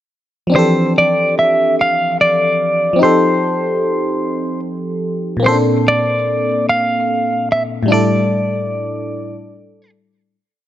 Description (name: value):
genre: R&B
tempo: 49 BPM (dotted quarters)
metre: 6/8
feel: straight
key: F major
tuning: A4 = 440 Hz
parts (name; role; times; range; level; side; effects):
- FM electric piano; accompaniment; 0.5-10.3 s; A2 to A4; -17 LUFS; left 1 dB; chorus, phaser
- clean electric guitar; melody; 0.6-9.9 s; C5 to F5; -15 LUFS; equal; none
room: light reverb, digital ambience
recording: none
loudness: -13 LUFS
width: side -12 dB against mid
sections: 0.5-10.3 verse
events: fade-out 7.9-10.3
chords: 0.5 Fmaj13; 3.0 F9; 5.4 Bbmaj7; 7.9 A7sus4